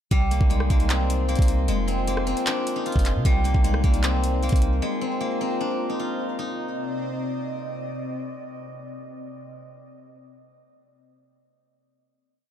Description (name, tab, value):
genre	hip hop, trap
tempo	153 BPM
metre	4/4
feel	half-time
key	C minor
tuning	A4 = 438 Hz
part	steel-string zither	melody	0.1-9.1 s	G3 to F4	-27 LUFS	left 3 dB	digital delay
part	airy breathy pad	sustained chords	0.4-9.5 s	C3 to C6	-33 LUFS	equal	chorus
part	clean 808-style bass	bass	0.1-4.8 s	F1 to C3	-23 LUFS	equal	none
part	trap drum kit	drums	0.1-4.7 s	handclaps, hi-hat, kick drum, rim click	-23 LUFS	equal	none
room	little or no reverb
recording	dark, warm production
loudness	-21 LUFS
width	side -10 dB against mid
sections	0.1-6.4 hook; 6.4-9.5 final chord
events	none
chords	0.1 Cmadd9; 1.7 Fm; 3.2 Cmadd9; 4.8 Bbsus2; 6.4 Cmadd9